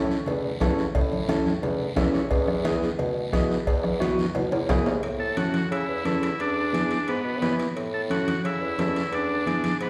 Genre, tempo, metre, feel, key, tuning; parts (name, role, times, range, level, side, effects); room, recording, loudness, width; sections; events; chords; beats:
latin, cumbia; 176 BPM; 4/4; straight; A major; A4 = 440 Hz
mellow electric guitar; accompaniment; 0.0-9.7 s; B3 to E5; -31 LUFS; equal
mellow bassoon; bass; 0.0-9.9 s; E2 to E3; -32 LUFS; equal
guiro; percussion; 0.1-9.9 s; -44 LUFS; equal
congas; percussion; 0.3-9.8 s; -33 LUFS; equal
cowbell and timbales; percussion; 0.3-9.9 s; -36 LUFS; equal
bombo; percussion; 0.6-4.9 s; -31 LUFS; equal
combo organ; melody; 5.2-9.9 s; B3 to A4; -30 LUFS; equal
wet recital hall reverb, RT60 1.5 s; recorded in a church or concert hall; -25 LUFS; mono
0.0-5.0 A section; 5.0-9.9 B section
clean electric guitar fill 1.8-2.3; drum fill 4.4-5.0
0.0 A; 2.3 E; 5.0 A; 6.4 E7; 7.8 A; 9.1 E7
0.27 0.61 | 0.95 1.29 1.63 1.97 | 2.31 2.65 2.99 3.33 | 3.67 4.01 4.36 4.70 | 5.04 5.38 5.72 6.06 | 6.40 6.74 7.08 7.42 | 7.76 8.10 8.44 8.78 | 9.12 9.47 9.81